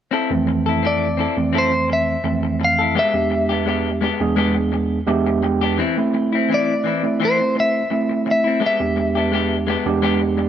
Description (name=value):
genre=blues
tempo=85 BPM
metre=4/4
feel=swing 54% on 16ths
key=unclear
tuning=A4 = 440 Hz
part: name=electric guitar through a small old amp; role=stabs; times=0.1-10.4 s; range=E3 to A4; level=-23 LUFS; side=left 5 dB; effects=none
part: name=overdriven tine electric piano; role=accompaniment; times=0.3-10.5 s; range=E2 to G5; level=-20 LUFS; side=right 3 dB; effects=none
part: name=clean electric guitar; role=melody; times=0.9-10.0 s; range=C5 to F5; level=-20 LUFS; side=left 1 dB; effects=spring reverb
room=light reverb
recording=none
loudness=-16 LUFS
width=side -9 dB against mid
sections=0.1-10.5 A section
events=tine electric piano fill 4.7-5.8, 10.0-10.5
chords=0.1 Fmaj7; 3.0 E7#9; 5.8 Am; 8.6 E7#9